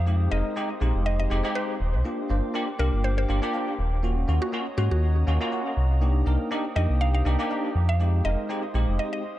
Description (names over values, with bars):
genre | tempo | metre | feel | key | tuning
deep house | 121 BPM | 4/4 | swing 55% on 16ths | unclear | A4 = 439 Hz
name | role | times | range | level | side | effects
mallet-like synth pluck | melody | 0.0-9.2 s | Gb4 to F5 | -33 LUFS | equal | chorus, vintage 12-bit sampler grit, dub echo
warbly tape-like pad | sustained chords | 0.0-9.4 s | Bb4 to Eb6 | -38 LUFS | equal | chorus, built-in reverb
sub bass with octave | bass | 0.0-9.0 s | Eb1 to Ab2 | -22 LUFS | equal | tube saturation
bell-like tine electric piano | stabs | 0.1-9.2 s | Ab3 to C5 | -29 LUFS | equal | ensemble chorus, analog delay
room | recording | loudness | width
light reverb | echo-heavy mix | -22 LUFS | side -14 dB against mid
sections
0.0-9.4 A section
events
break 9.0-9.4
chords
0.1 Fm7; 2.0 Gm7; 4.0 Ebm7; 6.0 Cm7; 8.0 Fm7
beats
| 0.07 0.56 1.06 1.55 | 2.05 2.55 3.04 3.54 | 4.03 4.53 5.03 5.52 | 6.02 6.51 7.01 7.50 | 8.00 8.50 8.99